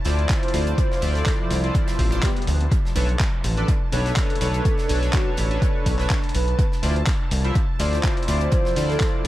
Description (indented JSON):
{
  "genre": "deep house",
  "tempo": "124 BPM",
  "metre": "4/4",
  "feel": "swing 55% on 16ths",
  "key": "unclear",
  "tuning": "A4 = 440 Hz",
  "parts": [
    { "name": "tight metal drum kit", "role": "drums", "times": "0.0-9.1 s", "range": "hi-hat, snare drum", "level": "-40 LUFS", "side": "right 2 dB", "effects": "high-pass filter on hats, high-pass filter on snare, high-pass filter on room, dub echo" },
    { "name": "dark studio violin section", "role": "texture", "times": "0.0-9.3 s", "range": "A5", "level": "-40 LUFS", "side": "equal", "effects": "sidechain pumping" },
    { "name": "granular cloud pad", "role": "texture", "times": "0.0-9.3 s", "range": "F3 to C6", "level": "-36 LUFS", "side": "right 1 dB", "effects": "built-in reverb, sidechain pumping" },
    { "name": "chorused polysynth", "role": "stabs", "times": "0.1-9.3 s", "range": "D4 to E5", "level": "-28 LUFS", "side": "equal", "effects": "sidechain pumping, dub echo" },
    { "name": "smooth gliding synth bass", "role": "bass", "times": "0.1-9.3 s", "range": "A1 to D2", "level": "-22 LUFS", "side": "equal", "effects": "sidechain pumping" },
    { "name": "dusty soul sampler-style drum kit", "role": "drums", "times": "0.1-9.3 s", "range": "handclaps, hi-hat", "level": "-31 LUFS", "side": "equal", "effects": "dub echo" },
    { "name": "electronic kick drum", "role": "drums", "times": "0.3-9.1 s", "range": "none", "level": "-22 LUFS", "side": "equal", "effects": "overdrive" },
    { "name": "breathy flute-like synth lead", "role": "melody", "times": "0.4-9.1 s", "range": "F#4 to C5", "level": "-30 LUFS", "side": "right 1 dB", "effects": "analog chorus, tape echo" },
    { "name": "swell", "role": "sound effects", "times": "1.9-2.7 s", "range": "none", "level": "-35 LUFS", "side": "left 4 dB", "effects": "none" }
  ],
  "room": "studio ambience",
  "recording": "echo-heavy mix",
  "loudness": "-19 LUFS",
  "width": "side -15 dB against mid",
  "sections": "0.0-9.3 A section",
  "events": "swell 1.9-2.7",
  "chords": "0.0 Dm9; 2.7 Bm9; 6.6 Dm9"
}